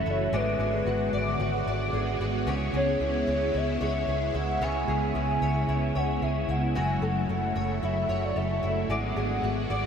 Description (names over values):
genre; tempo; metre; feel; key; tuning
dream pop; 112 BPM; 4/4; straight; unclear; A4 = 440 Hz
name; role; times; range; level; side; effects
hollow clarinet-like synth lead; melody; 0.0-9.9 s; B4 to G#5; -30 LUFS; left 1 dB; chorus, diffuse ambient delay
phased string machine; sustained chords; 0.0-9.9 s; C#3 to F#4; -30 LUFS; right 1 dB; ensemble chorus, phaser
fingerpicked twelve-string acoustic guitar; arpeggios; 0.0-9.9 s; C#3 to D5; -32 LUFS; left 1 dB; ensemble chorus, diffuse ambient delay
vintage muted fingered electric bass; bass; 0.0-9.9 s; F#1 to C#2; -31 LUFS; equal; none
room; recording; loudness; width
wet huge ambient reverb, RT60 8.2 s; dreamy mix soaked in reverb; -25 LUFS; side -7 dB against mid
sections
0.0-9.9 A section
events
none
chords
0.3 G#m7b5; 2.5 C#m7; 6.8 F#m7; 8.9 G#m7b5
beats
| 0.33 0.86 1.40 1.93 | 2.47 3.00 3.54 4.08 | 4.61 5.15 5.68 6.22 | 6.75 7.29 7.83 8.36 | 8.90 9.43